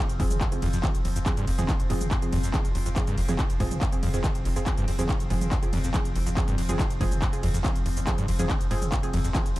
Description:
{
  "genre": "driving peak-time techno",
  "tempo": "141 BPM",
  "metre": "4/4",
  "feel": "straight",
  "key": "F minor",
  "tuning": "A4 = 440 Hz",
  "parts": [
    { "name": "overdriven acid bass", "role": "riff", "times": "0.0-9.6 s", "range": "Eb2 to Eb3", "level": "-31 LUFS", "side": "equal", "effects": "analog chorus, sidechain pumping" },
    { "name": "overtone-sweeping drone", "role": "drone", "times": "0.1-9.6 s", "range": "F3 to C4", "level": "-37 LUFS", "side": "left 1 dB", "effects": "chorus, built-in reverb, sidechain pumping" },
    { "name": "warm sub bass", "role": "bass", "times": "0.1-9.6 s", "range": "F1", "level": "-30 LUFS", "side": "equal", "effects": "tube saturation, sidechain pumping, low-pass filter" },
    { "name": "techno drum kit", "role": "drums", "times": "0.1-9.6 s", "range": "handclaps, hi-hat, ride cymbal, shaker, toms", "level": "-32 LUFS", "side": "equal", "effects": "overdrive" },
    { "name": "filtered dub chord stab", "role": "stabs", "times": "0.2-9.5 s", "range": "F3 to Ab4", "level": "-34 LUFS", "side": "right 2 dB", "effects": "chorus, sidechain pumping, dub echo" },
    { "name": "electronic kick drum", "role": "drums", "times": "0.2-9.4 s", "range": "none", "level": "-27 LUFS", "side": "equal", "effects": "overdrive" }
  ],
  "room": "digital ambience",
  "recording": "dark, warm production",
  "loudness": "-23 LUFS",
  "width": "side -17 dB against mid",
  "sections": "0.0-9.6 A section",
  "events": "none",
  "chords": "0.0 Fm"
}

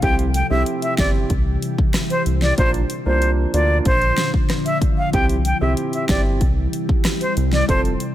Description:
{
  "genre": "dancehall",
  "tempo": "94 BPM",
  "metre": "4/4",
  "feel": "straight",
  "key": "C mixolydian",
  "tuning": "A4 = 440 Hz",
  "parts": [
    { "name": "breathy bright concert flute", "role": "melody", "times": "0.0-7.8 s", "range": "C5 to G5", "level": "-22 LUFS", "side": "equal", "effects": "none" },
    { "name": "warm concert grand piano", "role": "accompaniment", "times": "0.0-7.9 s", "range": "Bb3 to A4", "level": "-25 LUFS", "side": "right 4 dB", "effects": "none" },
    { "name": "glassy FM pad", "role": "sustained chords", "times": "0.0-8.1 s", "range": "Bb2 to A4", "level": "-26 LUFS", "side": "left 2 dB", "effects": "ensemble chorus, built-in reverb, sidechain pumping" },
    { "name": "round analog bass", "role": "bass", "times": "0.0-8.0 s", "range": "F1 to D2", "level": "-20 LUFS", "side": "equal", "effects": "none" },
    { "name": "pop drum kit", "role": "drums", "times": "0.0-8.1 s", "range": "hi-hat, kick drum, rim click, snare drum", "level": "-20 LUFS", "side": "equal", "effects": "none" }
  ],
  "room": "digital ambience",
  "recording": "none",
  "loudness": "-16 LUFS",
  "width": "side -12 dB against mid",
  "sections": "0.0-8.1 A section",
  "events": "none",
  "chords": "0.0 C; 2.6 Bb; 5.1 C"
}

